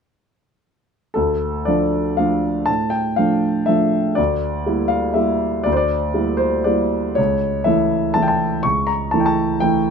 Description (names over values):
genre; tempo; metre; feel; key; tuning
classical, piano waltz; 120 BPM; 3/4; uneven beats, rubato; D minor; A4 = 440 Hz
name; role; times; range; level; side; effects
warm grand piano; solo; 1.1-9.9 s; C#2 to C#6; -16 LUFS; equal; none
room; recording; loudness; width
little or no reverb; close, detailed microphones; -16 LUFS; side -6 dB against mid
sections
1.2-9.9 A section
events
none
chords
1.2 Dm; 4.2 Em7b5/D; 7.2 A/C#